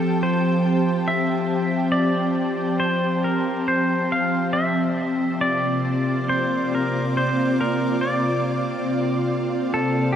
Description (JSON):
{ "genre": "ambient", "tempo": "70 BPM", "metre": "3/4", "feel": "straight", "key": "C mixolydian", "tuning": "A4 = 440 Hz", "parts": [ { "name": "pedal steel guitar", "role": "melody", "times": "0.0-10.2 s", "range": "G4 to F5", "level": "-24 LUFS", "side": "equal", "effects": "tape echo" }, { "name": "ethereal airy pad", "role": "sustained chords", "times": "0.0-10.2 s", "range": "C3 to A5", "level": "-21 LUFS", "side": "equal", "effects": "ensemble chorus, built-in reverb" } ], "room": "wet cathedral reverb, RT60 5.5 s", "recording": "in a vast, echoing space", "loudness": "-19 LUFS", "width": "side -9 dB against mid", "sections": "0.0-10.2 A section", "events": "none", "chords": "0.0 Fadd9; 4.5 C9sus4" }